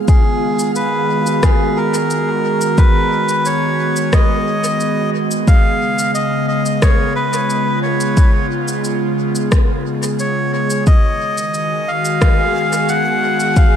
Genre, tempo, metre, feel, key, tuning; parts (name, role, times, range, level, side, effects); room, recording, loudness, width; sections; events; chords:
ambient dub; 89 BPM; 4/4; straight; G# dorian; A4 = 440 Hz
airy breathy pad; sustained chords; 0.0-13.8 s; C#3 to G#4; -18 LUFS; equal; chorus
backwards swelling texture; texture; 0.0-0.1, 11.7-13.8 s; G#4 to G#5; -26 LUFS; left 2 dB; built-in reverb
melodica; melody; 0.1-13.8 s; G#4 to F#5; -18 LUFS; equal; dub echo
electronic cabasa and rim click; drums; 0.1-13.7 s; -24 LUFS; equal; dub echo
electronic kick drum; drums; 0.1-13.7 s; -11 LUFS; left 1 dB; overdrive
light reverb; echo-heavy mix; -13 LUFS; side -9 dB against mid
0.1-13.8 A section
0.1 G#m7; 5.5 C#7; 10.9 G#m7